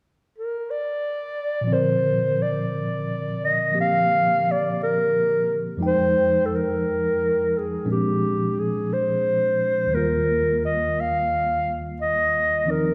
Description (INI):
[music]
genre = jazz ballad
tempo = 58 BPM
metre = 4/4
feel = swing 68% on 8ths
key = Bb major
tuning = A4 = 440 Hz
[part]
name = dark clarinet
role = melody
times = 0.4-12.9 s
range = G4 to F5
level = -24 LUFS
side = equal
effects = none
[part]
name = tine electric piano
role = accompaniment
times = 1.6-12.9 s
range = Eb2 to G5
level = -28 LUFS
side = equal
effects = none
[sound]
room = wet scoring stage reverb, RT60 1.6 s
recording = recorded in a church or concert hall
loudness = -22 LUFS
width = mono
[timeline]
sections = 0.0-1.7 A section; 1.7-12.9 B section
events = none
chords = 0.0 N.C.; 1.7 Bbadd9; 5.8 Fm9; 7.9 Bb9; 9.9 Ebadd9